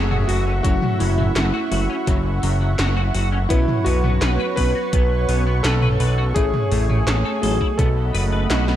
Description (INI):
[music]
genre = synthwave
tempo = 84 BPM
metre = 4/4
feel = straight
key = F# dorian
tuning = A4 = 440 Hz
[part]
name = warm electric grand piano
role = melody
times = 0.0-8.5 s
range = E4 to B4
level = -26 LUFS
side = right 1 dB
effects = tape echo
[part]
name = warm analog pad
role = sustained chords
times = 0.0-8.8 s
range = A3 to C#6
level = -28 LUFS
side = right 2 dB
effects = chorus, sidechain pumping
[part]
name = clean electric guitar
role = riff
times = 0.0-8.8 s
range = F#3 to B4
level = -31 LUFS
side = left 4 dB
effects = ensemble chorus, ping-pong delay
[part]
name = FM electric piano with soft pad layer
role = stabs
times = 0.0-8.8 s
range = F#3 to C#5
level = -28 LUFS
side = left 2 dB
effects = chorus, phaser
[part]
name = fat analog bass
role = bass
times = 0.0-8.8 s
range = F#1 to B1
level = -20 LUFS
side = equal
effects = none
[part]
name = 80s electronic pad drums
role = drums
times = 0.1-8.8 s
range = handclaps, hi-hat, snare drum, toms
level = -25 LUFS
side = equal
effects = gated reverb on snare and toms, overdrive
[part]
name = electronic kick drum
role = drums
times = 0.6-7.9 s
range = none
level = -21 LUFS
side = equal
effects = none
[sound]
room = light reverb, digital ambience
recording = dark, warm production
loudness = -17 LUFS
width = side -11 dB against mid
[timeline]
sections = 0.0-8.8 A section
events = none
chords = 0.0 F#m7; 3.5 Bsus2; 6.4 Amaj7; 7.8 B7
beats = | 0.65 1.36 2.07 2.79 | 3.50 4.22 4.93 5.65 | 6.36 7.07 7.79 8.50